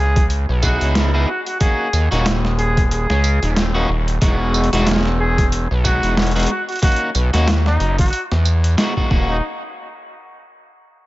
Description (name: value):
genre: glitch hop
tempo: 92 BPM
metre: 4/4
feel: swing 57% on 16ths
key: Eb phrygian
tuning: A4 = 440 Hz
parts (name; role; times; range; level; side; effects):
- warm trumpet; melody; 0.0-9.4 s; Eb4 to Ab4; -24 LUFS; equal; dub echo
- gritty driven synth bass; bass; 0.0-9.4 s; Eb1 to E2; -17 LUFS; equal; none
- boom bap sampler-style drum kit; drums; 0.0-8.9 s; hi-hat, snare drum, tambourine; -23 LUFS; equal; overdrive, dub echo
- electronic kick drum; drums; 0.2-9.3 s; none; -16 LUFS; equal; overdrive
- electric guitar at the edge of break-up; stabs; 0.6-9.4 s; G#3 to Ab4; -23 LUFS; equal; sidechain pumping, dub echo
room: light reverb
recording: echo-heavy mix, nothing above 7.6 kHz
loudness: -15 LUFS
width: side -18 dB against mid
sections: 0.0-9.4 A section; 9.4-11.1 B section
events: drop 0.0-9.4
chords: 0.0 Dbm7; 1.6 Ebm7; 4.2 Emaj7; 6.8 Bmaj7; 8.1 Emaj7; 9.1 Ebm7; 9.4 N.C.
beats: 0.30 0.95 | 1.61 2.26 2.91 3.56 | 4.22 4.87 5.52 6.17 | 6.83 7.48 8.13 8.78 | 9.43